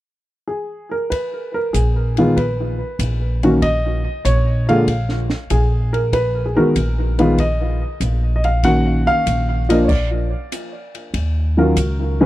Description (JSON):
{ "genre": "jazz piano trio", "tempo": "96 BPM", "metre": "4/4", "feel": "swing 69% on 8ths", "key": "Eb minor", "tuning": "A4 = 439 Hz", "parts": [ { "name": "warm baby grand piano", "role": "melody", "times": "0.5-12.3 s", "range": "D3 to Gb5", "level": "-18 LUFS", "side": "equal", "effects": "tape echo" }, { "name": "compact cocktail drum kit", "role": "drums", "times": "1.1-12.0 s", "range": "crash cymbal, hi-hat, kick drum, ride cymbal, snare drum", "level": "-27 LUFS", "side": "equal", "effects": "none" }, { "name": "upright bass", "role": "bass", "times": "1.7-12.3 s", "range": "Bb1 to Eb2", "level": "-18 LUFS", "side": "equal", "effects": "none" } ], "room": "little or no reverb", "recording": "dry, close 1970s-style studio recording", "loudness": "-16 LUFS", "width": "side -16 dB against mid", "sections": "0.0-1.1 A section; 1.1-11.1 B section; 11.1-12.3 C section", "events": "stop 9.9-11.1", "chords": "0.0 N.C.; 1.1 Abm; 11.1 Ebm7" }